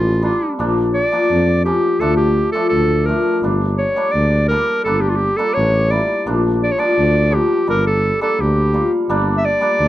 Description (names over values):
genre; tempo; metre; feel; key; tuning
klezmer; 84 BPM; 2/4; straight; G minor; A4 = 440 Hz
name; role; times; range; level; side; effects
bright clarinet; melody; 0.0-9.9 s; F4 to E5; -17 LUFS; equal; none
cimbalom; accompaniment; 0.0-9.9 s; F3 to F4; -20 LUFS; left 1 dB; none
breathy tuba; bass; 0.0-9.9 s; G1 to F2; -18 LUFS; equal; none
room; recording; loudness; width
little or no reverb; dry, close 1970s-style studio recording; -14 LUFS; side -14 dB against mid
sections
0.0-9.1 A section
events
none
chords
0.0 Gm; 0.6 Bb; 2.0 Dm; 3.4 Gm; 6.3 Bb; 7.7 Gm